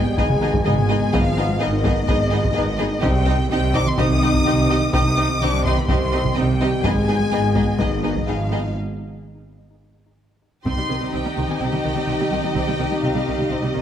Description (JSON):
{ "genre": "cinematic, hybrid orchestral and electronic film score", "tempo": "126 BPM", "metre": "4/4", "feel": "straight", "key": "C harmonic minor", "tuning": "A4 = 436 Hz", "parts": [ { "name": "warm symphonic violin section", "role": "melody", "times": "0.0-13.8 s", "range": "Eb5 to Eb6", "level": "-26 LUFS", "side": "left 2 dB", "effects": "none" }, { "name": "rich symphonic violin section", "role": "second line", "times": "0.0-13.8 s", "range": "G4 to Eb5", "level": "-28 LUFS", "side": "left 2 dB", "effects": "none" }, { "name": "hollow soft pad", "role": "sustained chords", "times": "0.0-13.8 s", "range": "Eb3 to Eb5", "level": "-27 LUFS", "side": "equal", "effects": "chorus" }, { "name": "warm French horn section", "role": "sustained chords", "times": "0.0-13.8 s", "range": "Eb3 to Eb4", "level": "-27 LUFS", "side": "left 4 dB", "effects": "none" }, { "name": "clear symphonic double bass section", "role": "bass", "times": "0.0-13.8 s", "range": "Ab1 to C2", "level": "-25 LUFS", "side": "right 1 dB", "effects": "none" }, { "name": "rich symphonic cello section", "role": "bass", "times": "0.0-13.8 s", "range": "Ab2 to C3", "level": "-26 LUFS", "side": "right 2 dB", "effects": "none" }, { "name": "tight sequenced synth", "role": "arpeggios", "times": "0.1-13.8 s", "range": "C3 to Ab4", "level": "-30 LUFS", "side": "equal", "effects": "none" }, { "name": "rich studio viola section", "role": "accompaniment", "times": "0.2-13.8 s", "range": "Eb3 to Eb4", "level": "-28 LUFS", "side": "right 1 dB", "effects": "none" }, { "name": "taiko ensemble", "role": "drums", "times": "0.2-11.6 s", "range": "none", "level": "-24 LUFS", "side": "equal", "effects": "none" } ], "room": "moderate scoring stage reverb, RT60 1.8 s", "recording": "none", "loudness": "-17 LUFS", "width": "side -10 dB against mid", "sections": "0.0-10.7 A section; 10.7-13.8 B section", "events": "break 8.7-10.7", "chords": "0.0 Abm; 3.0 Cm; 6.8 Abm; 10.7 Cm" }